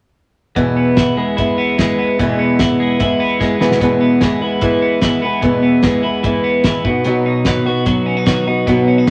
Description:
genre	jangly indie pop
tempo	148 BPM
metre	4/4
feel	straight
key	E major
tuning	A4 = 441 Hz
part	fingerpicked acoustic archtop guitar	accompaniment	0.6-9.1 s	E2 to F#4	-17 LUFS	equal	none
part	twelve-string electric guitar	arpeggios	0.6-9.1 s	E2 to F#4	-20 LUFS	equal	none
part	cloth-damped thuddy drum kit	drums	0.6-9.1 s	hi-hat, kick drum, snare drum	-21 LUFS	equal	none
room	moderate studio reverb, RT60 0.8 s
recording	none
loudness	-15 LUFS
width	mono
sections	0.6-3.8 A section; 3.8-9.1 B section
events	drum fill 3.4-3.8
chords	0.6 E; 6.9 B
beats	| 0.56 0.97 1.38 1.78 | 2.19 2.60 3.00 3.41 | 3.81 4.22 4.62 5.03 | 5.43 5.84 6.24 6.65 | 7.05 7.46 7.86 8.27 | 8.67 9.08

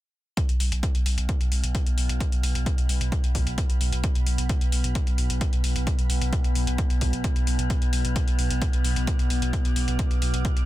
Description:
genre	driving peak-time techno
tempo	131 BPM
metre	4/4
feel	straight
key	B minor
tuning	A4 = 440 Hz
part	metallic inharmonic drone	drone	1.0-10.7 s	B2 to B3	-31 LUFS	equal	chorus, built-in reverb, sidechain pumping
part	electronic hi-hat	drums	0.4-10.7 s	none	-33 LUFS	left 2 dB	sidechain pumping on hats
part	electronic kick drum	drums	0.4-10.5 s	none	-25 LUFS	equal	none
part	granular cloud pad	texture	1.7-10.7 s	B3 to D6	-41 LUFS	equal	built-in reverb, sidechain pumping
part	saturated sub bass	bass	0.5-10.7 s	B1	-26 LUFS	equal	tube saturation, sidechain pumping, low-pass filter
room	little or no reverb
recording	dense, heavily limited modern master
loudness	-22 LUFS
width	side -16 dB against mid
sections	0.4-10.7 A section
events	fade-in on ambient pad 0.4-10.7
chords	0.4 B5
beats	| 0.37 0.83 1.29 1.75 | 2.21 2.66 3.12 3.58 | 4.04 4.50 4.95 5.41 | 5.87 6.33 6.79 7.24 | 7.70 8.16 8.62 9.07 | 9.53 9.99 10.45

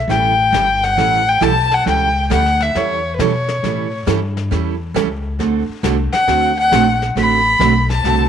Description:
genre	country, western swing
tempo	136 BPM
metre	4/4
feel	swing 67% on 8ths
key	A mixolydian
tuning	A4 = 444 Hz
part	upright bass	bass	0.0-8.3 s	G1 to B2	-20 LUFS	left 1 dB	none
part	dark fiddle	melody	0.1-8.3 s	B4 to B5	-15 LUFS	left 2 dB	slapback echo
part	picked steel-string acoustic guitar	accompaniment	0.1-8.3 s	D3 to A4	-20 LUFS	right 11 dB	none
part	vintage brush drum kit	drums	0.1-8.3 s	brushed snare drum, hi-hat, snare drum	-27 LUFS	left 8 dB	none
room	moderate spring reverb, RT60 1.4 s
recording	1960s-style stereo with parts hard left and right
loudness	-13 LUFS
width	side -8 dB against mid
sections	0.0-8.3 A section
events	none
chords	0.0 A7; 5.4 D7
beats	| 0.09 0.53 0.97 1.42 | 1.86 2.30 2.75 3.19 | 3.63 4.07 4.51 4.96 | 5.40 5.84 6.28 6.72 | 7.17 7.61 8.05

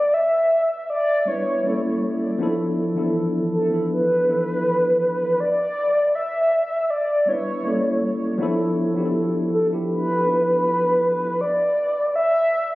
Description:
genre	R&B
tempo	80 BPM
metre	4/4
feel	straight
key	D dorian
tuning	A4 = 440 Hz
part	mellow horn-like synth lead	melody	0.0-12.8 s	A4 to E5	-20 LUFS	equal	chorus, digital delay
part	mellow tine electric piano	accompaniment	1.3-11.4 s	E3 to B4	-22 LUFS	equal	medium stereo tremolo
room	moderate lush hall reverb, RT60 2.6 s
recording	recorded on a phone in the room, studio reverb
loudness	-19 LUFS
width	side -18 dB against mid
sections	0.0-12.8 A section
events	none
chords	0.0 Em7; 1.6 A7b9; 2.4 Dm69; 5.4 Em7; 7.6 A7b9; 8.4 Dm69; 11.4 E7(no3)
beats	0.14 0.89 1.64 | 2.39 3.14 3.89 4.64 | 5.39 6.14 6.89 7.64 | 8.39 9.14 9.89 10.64 | 11.39 12.14

